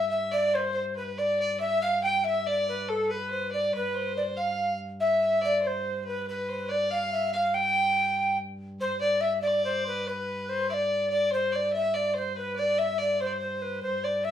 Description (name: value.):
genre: medieval dance.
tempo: 95 BPM (dotted quarters).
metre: 6/8.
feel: straight.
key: G mixolydian.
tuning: A4 = 438 Hz.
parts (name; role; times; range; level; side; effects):
breathy mellow alto recorder; melody; 0.0-14.3 s; A4 to G5; -26 LUFS; right 1 dB; none.
rich fiddle; second line; 0.0-14.3 s; A4 to G5; -32 LUFS; left 4 dB; none.
pipe organ, principal; drone; 0.0-14.3 s; G2; -40 LUFS; equal; none.
room: light reverb.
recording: rough home demo mix, small room reverb.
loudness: -25 LUFS.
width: side -10 dB against mid.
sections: 0.0-8.8 A section; 8.8-14.3 B section.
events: none.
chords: none.